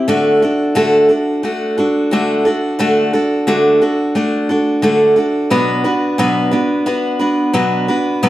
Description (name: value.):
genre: rock.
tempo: 88 BPM.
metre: 4/4.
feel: straight.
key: D major.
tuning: A4 = 440 Hz.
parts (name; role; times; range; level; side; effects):
picked steel-string acoustic guitar; solo; 0.0-8.3 s; B2 to B4; -12 LUFS; equal; slapback echo.
room: wet large studio reverb, RT60 1.3 s.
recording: dark, warm production.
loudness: -12 LUFS.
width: side -14 dB against mid.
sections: 0.0-8.3 A section.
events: none.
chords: 0.1 D; 5.5 Bm.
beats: | 0.08 0.76 1.44 2.12 | 2.80 3.48 4.16 4.83 | 5.51 6.19 6.87 7.55 | 8.23.